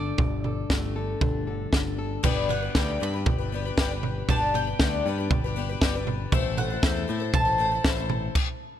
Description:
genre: indie folk with a building arrangement.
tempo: 118 BPM.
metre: 4/4.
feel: straight.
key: unclear.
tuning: A4 = 440 Hz.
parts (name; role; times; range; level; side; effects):
bowl-back mandolin; melody; 0.0-8.8 s; D5 to B5; -30 LUFS; equal; analog delay.
fingerpicked plugged-in steel-string acoustic guitar; accompaniment; 0.0-2.2 s; G2 to A4; -33 LUFS; left 4 dB; none.
picked electric bass; bass; 0.0-8.3 s; G1 to A2; -31 LUFS; equal; none.
compact cocktail drum kit; drums; 0.2-8.5 s; crash cymbal, kick drum, snare drum, toms; -26 LUFS; right 1 dB; none.
picked twelve-string acoustic guitar; accompaniment; 2.2-8.4 s; G3 to C5; -30 LUFS; left 6 dB; none.
room: light reverb.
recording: none.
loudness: -23 LUFS.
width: side -10 dB against mid.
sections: 0.0-2.2 A section; 2.2-8.8 B section.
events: none.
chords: 0.0 Gsus2; 2.2 G; 6.3 Am.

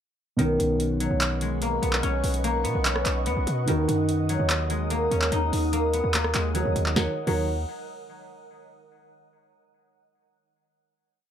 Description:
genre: hip hop, trap.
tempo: 146 BPM.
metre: 4/4.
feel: half-time.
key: Eb minor.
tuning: A4 = 440 Hz.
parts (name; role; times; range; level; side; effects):
guzheng; melody; 0.4-8.0 s; D#3 to Eb4; -26 LUFS; left 2 dB; low-pass filter, analog delay.
dark concert grand piano; accompaniment; 0.4-7.5 s; B2 to Bb4; -31 LUFS; right 3 dB; low-pass filter.
glassy FM pad; sustained chords; 1.1-7.2 s; Bb4 to Eb6; -35 LUFS; left 1 dB; ensemble chorus, built-in reverb.
hard-hitting 808-style bass; bass; 0.4-7.7 s; B1 to B2; -27 LUFS; equal; none.
booming analog drum machine; drums; 0.4-7.4 s; crash cymbal, handclaps, hi-hat, rim click, snare drum; -29 LUFS; equal; none.
room: light reverb, digital ambience.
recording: none.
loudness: -22 LUFS.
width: side -9 dB against mid.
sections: 0.4-7.0 hook; 7.0-8.6 final chord.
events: none.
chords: 0.4 Badd9; 3.7 Ebm.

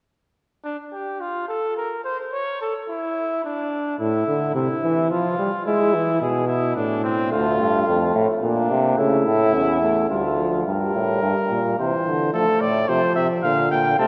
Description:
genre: classical, imitative canzona for brass ensemble.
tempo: 108 BPM.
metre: 3/4.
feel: straight.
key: D minor.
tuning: A4 = 440 Hz.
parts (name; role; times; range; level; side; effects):
mellow trumpet; second line; 0.6-10.7, 14.0-14.1 s; C4 to C#5; -27 LUFS; equal; none.
warm trombone; accompaniment; 4.0-14.1 s; A2 to C#4; -25 LUFS; equal; none.
warm euphonium; bass; 7.3-14.1 s; D2 to F3; -24 LUFS; equal; none.
clear trumpet; melody; 10.7-14.1 s; A4 to A5; -24 LUFS; equal; none.
room: wet church reverb, RT60 2.8 s.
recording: worn, warbling old tape, cassette tape, warbly pitch drift.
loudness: -21 LUFS.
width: mono.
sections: 0.6-10.7 A section; 10.7-14.1 B section.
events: none.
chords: 0.6 N.C.; 4.0 Am; 5.1 Fsus2; 5.7 E; 6.8 Am; 7.3 Dm; 8.4 Bb; 9.0 A; 10.1 Dm; 10.7 Gm; 11.8 C; 12.3 F; 13.4 Bb.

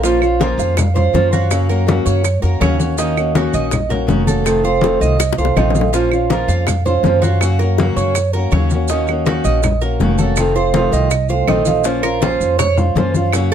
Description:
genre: latin, Cuban son and guajira.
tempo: 162 BPM.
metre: 4/4.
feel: straight.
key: Bb minor.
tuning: A4 = 441 Hz.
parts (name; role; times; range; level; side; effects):
fingerpicked acoustic archtop guitar; accompaniment; 0.0-13.5 s; C3 to C5; -19 LUFS; left 1 dB; none.
Cuban tres; arpeggios; 0.0-13.5 s; Db4 to F5; -20 LUFS; right 7 dB; none.
upright bass; bass; 0.0-13.5 s; F1 to Gb2; -17 LUFS; equal; none.
bongos; percussion; 0.0-13.5 s; none; -23 LUFS; left 9 dB; none.
congas; percussion; 0.0-13.5 s; none; -21 LUFS; left 3 dB; none.
maracas; percussion; 0.0-13.5 s; none; -30 LUFS; right 7 dB; none.
claves; percussion; 0.2-13.5 s; none; -26 LUFS; right 12 dB; none.
room: little or no reverb.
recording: close, detailed microphones.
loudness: -13 LUFS.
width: side -9 dB against mid.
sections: 0.0-11.9 A section; 11.9-13.5 B section.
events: drum fill 5.2-5.9; Cuban tres solo 11.9-13.5.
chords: 0.0 Bbmadd9; 1.5 Gb; 3.0 Ebm7; 4.5 F7; 5.9 Bbmadd9; 7.4 Gb; 8.9 Ebm7; 10.4 F7; 11.9 Bbmadd9.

